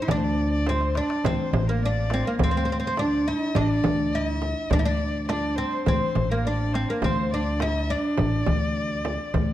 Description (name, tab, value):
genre	Arabic maqam ensemble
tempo	104 BPM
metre	4/4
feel	straight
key	D maqam bayati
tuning	A4 = 440 Hz
part	oud	melody	0.0-9.5 s	Bb3 to E4-50c	-26 LUFS	right 1 dB	none
part	dark violin	second line	0.0-9.5 s	Bb4 to E5-46c	-32 LUFS	left 4 dB	none
part	upright bass	bass	0.1-9.5 s	A1 to D2	-26 LUFS	equal	none
part	darbuka	percussion	0.1-9.5 s	none	-31 LUFS	left 4 dB	none
part	frame drum	percussion	0.1-9.5 s	none	-31 LUFS	right 4 dB	none
room	light reverb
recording	dark, warm production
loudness	-22 LUFS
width	side -13 dB against mid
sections	0.0-9.5 A section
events	drum fill 0.7-1.2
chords	none